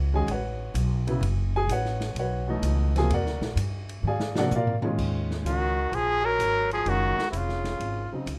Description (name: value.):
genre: modal jazz.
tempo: 128 BPM.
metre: 4/4.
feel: swing 68% on 8ths.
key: Eb dorian from 5.0 s.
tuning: A4 = 440 Hz.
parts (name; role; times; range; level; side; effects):
warm grand piano; accompaniment; 0.0-8.3 s; B2 to G#5; -31 LUFS; equal; none.
upright bass; bass; 0.0-8.4 s; F1 to A#2; -30 LUFS; equal; none.
open jazz drum kit; drums; 0.3-8.4 s; crash cymbal, hi-hat, kick drum, ride cymbal, snare drum, toms; -38 LUFS; equal; none.
clear trumpet; melody; 5.5-8.1 s; Fb4 to Bb4; -28 LUFS; equal; none.
clear tenor saxophone; second line; 5.5-8.1 s; C3 to Gb3; -36 LUFS; equal; none.
room: light reverb.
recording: none.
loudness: -26 LUFS.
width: mono.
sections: 0.0-5.0 A section; 5.0-8.4 B section.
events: drum fill 4.0-5.0.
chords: 0.0 B9sus4; 3.1 A#7b13; 5.0 Ebm11.